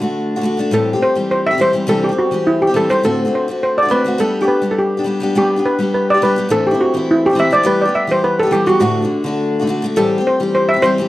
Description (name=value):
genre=celtic folk, Celtic reel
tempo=208 BPM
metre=4/4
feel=swing 53% on 8ths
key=G major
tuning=A4 = 440 Hz
part: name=steel pan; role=melody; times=0.0-11.1 s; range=E4 to E5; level=-15 LUFS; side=equal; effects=none
part: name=picked steel-string acoustic guitar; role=accompaniment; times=0.0-11.1 s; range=D2 to G4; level=-17 LUFS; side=left 2 dB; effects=none
room=moderate booth ambience, RT60 0.2 s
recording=dark, warm production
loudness=-13 LUFS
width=side -16 dB against mid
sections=0.0-5.4 A section; 5.4-11.1 A section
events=none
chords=0.0 D; 0.7 Am7; 1.9 C; 3.0 D7; 4.2 G; 6.5 Am; 7.7 Em; 8.8 D; 10.0 Am7